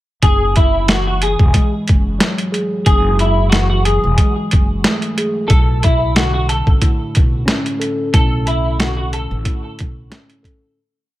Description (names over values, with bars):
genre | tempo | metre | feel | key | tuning
hip hop, boom-bap hip-hop | 91 BPM | 4/4 | swing 54% on 16ths | F# minor | A4 = 440 Hz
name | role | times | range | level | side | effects
semi-hollow electric guitar | melody | 0.2-9.6 s | E4 to A4 | -20 LUFS | left 1 dB | ensemble chorus, high-pass filter, low-pass filter, digital delay
mellow tine electric piano | accompaniment | 0.2-10.8 s | G#2 to A4 | -22 LUFS | equal | high-pass filter, low-pass filter
upright bass | bass | 0.2-10.1 s | E1 to B1 | -18 LUFS | equal | none
boom bap sampler-style drum kit | drums | 0.2-10.6 s | hi-hat, kick drum, snare drum | -14 LUFS | equal | none
room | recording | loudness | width
little or no reverb | none | -13 LUFS | side -16 dB against mid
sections
0.2-10.8 verse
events
fade-out 8.1-10.8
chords
0.2 F#m9; 5.5 Bm9